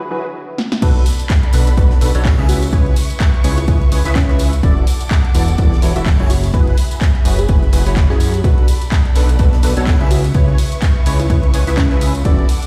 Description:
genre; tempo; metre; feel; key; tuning
piano house; 126 BPM; 4/4; swing 57% on 16ths; B dorian; A4 = 441 Hz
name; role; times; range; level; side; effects
percussive organ stab; riff; 0.0-12.5 s; B2 to E5; -25 LUFS; equal; ensemble chorus, sidechain pumping, tape echo
punchy analog drum machine; drums; 0.6-12.7 s; crash cymbal, handclaps, hi-hat, ride cymbal, snare drum; -28 LUFS; equal; overdrive
dark studio violin section; sustained chords; 0.8-12.7 s; G#4 to D6; -33 LUFS; equal; sidechain pumping
fat analog bass; bass; 0.8-12.5 s; E1 to F#2; -18 LUFS; equal; sidechain pumping
electronic kick drum; drums; 0.8-12.4 s; none; -16 LUFS; equal; overdrive
gated 80s drum kit; drums; 0.8-12.6 s; hi-hat, ride cymbal, snare drum; -39 LUFS; equal; none
tambourine; percussion; 0.8-12.7 s; none; -36 LUFS; equal; none
bell-like FM electric piano; melody; 2.5-12.3 s; C#4 to G#4; -28 LUFS; equal; chorus, tape echo
room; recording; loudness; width
small room ambience; played on a big sound system in a bare room, stone room reverb; -14 LUFS; mono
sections
0.8-12.7 A section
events
break 0.0-0.8; drum fill 0.6; drop 0.8-12.7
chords
0.0 F#9sus4; 0.8 Bm7; 2.5 C#m7; 4.6 E9sus4; 6.3 F#9sus4; 8.4 Bm7; 10.1 C#m7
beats
0.35 | 0.82 1.30 1.77 2.25 | 2.73 3.20 3.68 4.16 | 4.63 5.11 5.58 6.06 | 6.54 7.01 7.49 7.97 | 8.44 8.92 9.39 9.87 | 10.35 10.82 11.30 11.78 | 12.25

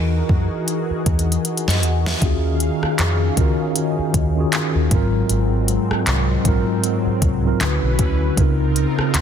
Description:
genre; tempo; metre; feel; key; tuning
contemporary R&B; 78 BPM; 4/4; swing 58% on 16ths; Eb dorian; A4 = 440 Hz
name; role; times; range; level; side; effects
mellow tine electric piano; accompaniment; 0.0-9.2 s; Ab2 to F#5; -21 LUFS; equal; medium stereo tremolo
lush unison pad; sustained chords; 0.0-9.2 s; Db3 to F5; -26 LUFS; equal; chorus, phaser
vintage muted fingered electric bass; bass; 0.0-9.2 s; Ab1 to F#2; -20 LUFS; equal; none
smooth R&B drum kit; drums; 0.3-9.2 s; handclaps, hi-hat, kick drum, rim click, snare drum; -21 LUFS; equal; none
room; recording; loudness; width
digital ambience; dense, heavily limited modern master; -16 LUFS; side -8 dB against mid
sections
0.0-2.2 A section; 2.2-9.2 B section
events
drum fill 1.4-2.2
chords
0.0 Emaj9#11; 2.2 Ebm11; 4.9 Ab13; 7.6 Dmaj13; 8.4 Dbmaj13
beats
0.68 1.45 | 2.22 2.99 3.76 4.53 | 5.30 6.07 6.83 7.60 | 8.37 9.14

